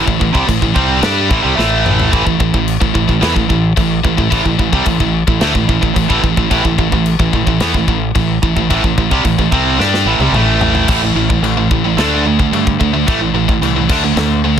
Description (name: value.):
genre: heavy metal.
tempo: 110 BPM.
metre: 4/4.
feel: straight.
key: A minor.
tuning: A4 = 440 Hz.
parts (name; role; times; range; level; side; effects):
distorted electric guitar; riff; 0.0-14.6 s; A2 to G4; -16 LUFS; right 9 dB; overdrive.
scooped high-gain guitar; riff; 0.0-14.6 s; A2 to G4; -16 LUFS; left 12 dB; distortion.
growling fingered electric bass; bass; 0.0-14.6 s; A1 to G2; -19 LUFS; equal; overdrive.
modern studio drum kit; drums; 0.1-14.6 s; china cymbal, crash cymbal, kick drum, snare drum, toms; -17 LUFS; left 1 dB; none.
room: studio ambience.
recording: dense, heavily limited modern master.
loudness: -11 LUFS.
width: side -8 dB against mid.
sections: 0.0-10.9 A section; 10.9-14.6 B section.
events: drum fill 1.6-2.1, 9.8-10.9.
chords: 0.0 Am; 10.9 A5; 12.0 D5; 13.1 Am; 13.9 D5.